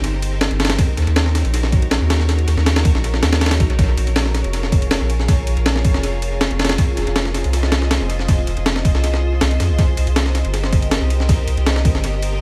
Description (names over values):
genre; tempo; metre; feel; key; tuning
drum and bass, jungle; 160 BPM; 4/4; straight; Bb minor; A4 = 440 Hz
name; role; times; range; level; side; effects
granular cloud pad; sustained chords; 0.0-12.4 s; Eb4 to Eb5; -29 LUFS; equal; built-in reverb
soft dub sub bass; bass; 0.0-12.4 s; F1 to F2; -21 LUFS; equal; tube saturation
breakbeat sampler-style drum kit; drums; 0.0-12.3 s; kick drum, ride cymbal, snare drum; -20 LUFS; equal; tape echo
room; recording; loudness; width
light reverb, digital ambience; echo-heavy mix, vinyl crackle; -17 LUFS; mono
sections
0.0-12.4 A section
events
none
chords
0.0 Cm7; 0.8 Ebm7; 3.8 Bbm7; 6.8 Fm7; 9.8 Cm7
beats
0.04 0.41 | 0.79 1.16 1.54 1.91 | 2.29 2.66 3.04 3.41 | 3.79 4.16 4.54 4.91 | 5.29 5.66 6.04 6.41 | 6.79 7.16 7.54 7.91 | 8.29 8.66 9.04 9.41 | 9.79 10.16 10.54 10.91 | 11.29 11.66 12.04